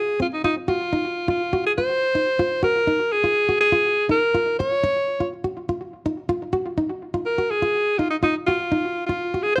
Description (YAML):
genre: afrobeat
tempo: 123 BPM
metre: 4/4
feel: straight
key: unclear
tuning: A4 = 441 Hz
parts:
  - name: bright alto saxophone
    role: melody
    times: 0.0-9.6 s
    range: Eb4 to Db5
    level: -22 LUFS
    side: equal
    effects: none
  - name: nylon-string guitar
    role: arpeggios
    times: 0.2-9.5 s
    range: C4 to Gb4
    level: -28 LUFS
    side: equal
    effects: tape echo
room: light reverb, small room ambience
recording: none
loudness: -22 LUFS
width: mono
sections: 0.0-9.6 A section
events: none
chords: 0.0 Ab7 (rootless); 0.9 Ebmadd9